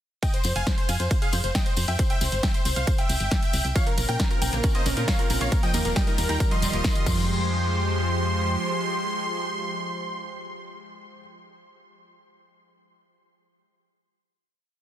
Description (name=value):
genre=uplifting trance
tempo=136 BPM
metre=4/4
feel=straight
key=F minor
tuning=A4 = 441 Hz
part: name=supersaw chords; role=melody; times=0.2-11.2 s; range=Ab4 to C6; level=-30 LUFS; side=equal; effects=sidechain pumping, digital delay
part: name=clear baby grand piano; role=second line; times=0.2-11.2 s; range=Bb4 to C6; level=-36 LUFS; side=left 1 dB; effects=sidechain pumping, tape echo
part: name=electronic kick drum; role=drums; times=0.2-7.2 s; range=none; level=-24 LUFS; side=equal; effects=overdrive
part: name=punchy analog drum machine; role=drums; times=0.2-7.2 s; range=crash cymbal, hi-hat, ride cymbal, snare drum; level=-32 LUFS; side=equal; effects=overdrive
part: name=tambourine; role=percussion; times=0.2-7.3 s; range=none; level=-35 LUFS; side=left 5 dB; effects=none
part: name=solid FM bass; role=bass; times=0.4-8.6 s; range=Eb1 to Bb2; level=-27 LUFS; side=equal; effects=sidechain pumping
part: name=analog pluck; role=arpeggios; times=3.8-7.5 s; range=Eb3 to Bb4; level=-34 LUFS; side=right 4 dB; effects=chorus, sidechain pumping, tape echo
part: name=lush unison pad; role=sustained chords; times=4.0-11.2 s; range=Db3 to C5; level=-30 LUFS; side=equal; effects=chorus, sidechain pumping
room=little or no reverb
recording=dense, heavily limited modern master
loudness=-22 LUFS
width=side -11 dB against mid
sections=0.2-7.3 drop; 7.3-10.8 final hit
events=drop 0.2-7.3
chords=0.2 Fm; 2.0 C; 3.8 Bbmadd9; 5.5 Ebadd9; 7.1 Fmadd9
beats=| 0.23 0.67 1.11 1.55 | 1.99 2.43 2.87 3.31 | 3.76 4.20 4.64 5.08 | 5.52 5.96 6.40 6.84 | 7.29 7.73 8.17 8.61 | 9.05 9.49 9.93 10.37